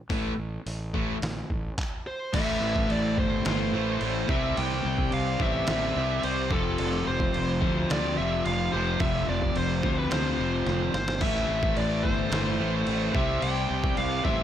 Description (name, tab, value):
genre	hard rock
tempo	108 BPM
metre	4/4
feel	straight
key	A minor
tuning	A4 = 440 Hz
part	crunchy overdriven guitar	riff	0.1-14.4 s	F2 to C4	-31 LUFS	left 7 dB	none
part	distorted electric guitar	riff	0.1-14.4 s	F2 to C4	-32 LUFS	right 6 dB	distortion
part	fuzz fingered electric bass	bass	0.1-14.4 s	F1 to D2	-31 LUFS	equal	overdrive
part	trip hop sampler-style drum kit	drums	0.1-14.4 s	crash cymbal, handclaps, hi-hat, kick drum, snare drum, splash cymbal	-31 LUFS	equal	overdrive
part	bluesy overdriven lead guitar	melody	2.1-14.4 s	A4 to G5	-30 LUFS	right 1 dB	distortion
part	analog string pad	sustained chords	2.3-14.4 s	F3 to D5	-39 LUFS	right 1 dB	none
room	light reverb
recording	faint mains hum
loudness	-24 LUFS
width	side -10 dB against mid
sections	0.0-2.3 A section; 2.3-14.4 B section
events	drum fill 10.7-11.2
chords	0.0 A5; 2.3 Am; 4.3 C; 6.5 F5; 11.2 Am; 13.1 C